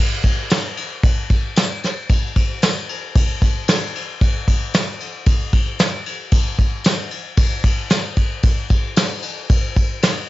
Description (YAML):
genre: rock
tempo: 113 BPM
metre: 4/4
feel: straight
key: none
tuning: none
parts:
  - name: soft brush drum kit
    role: drums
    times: 0.2-10.2 s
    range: crash cymbal, kick drum, snare drum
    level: -16 LUFS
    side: equal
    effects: none
  - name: tambourine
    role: percussion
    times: 0.5-10.2 s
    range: none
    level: -27 LUFS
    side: left 5 dB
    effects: none
room: little or no reverb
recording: home recording on cassette, nothing above 7.6 kHz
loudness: -16 LUFS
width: side -17 dB against mid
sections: 0.0-10.3 A section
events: none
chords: none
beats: 0.51 1.04 1.57 | 2.10 2.62 3.15 3.68 | 4.21 4.74 5.27 5.80 | 6.33 6.86 7.38 7.91 | 8.44 8.97 9.50 10.03